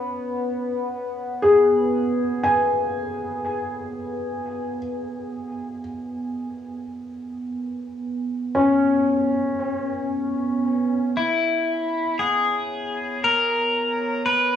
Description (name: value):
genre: ambient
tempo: 59 BPM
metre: 4/4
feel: straight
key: unclear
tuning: A4 = 439 Hz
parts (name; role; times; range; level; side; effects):
- felt-muted upright piano; arpeggios; 0.0-14.6 s; C#4 to G#5; -21 LUFS; left 2 dB; cassette tape, tape echo
- analog drone; drone; 0.0-14.6 s; B3 to C#5; -27 LUFS; right 1 dB; chorus, cassette tape, plate reverb
- pedal steel guitar; melody; 11.2-14.6 s; E4 to B4; -20 LUFS; left 2 dB; plate reverb, tape echo
room: wet booth ambience, RT60 0.2 s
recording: home recording on cassette, studio reverb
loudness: -21 LUFS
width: side -9 dB against mid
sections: 0.0-11.2 A section; 11.2-14.6 B section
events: none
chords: 0.0 G#madd11/B; 11.2 C#m7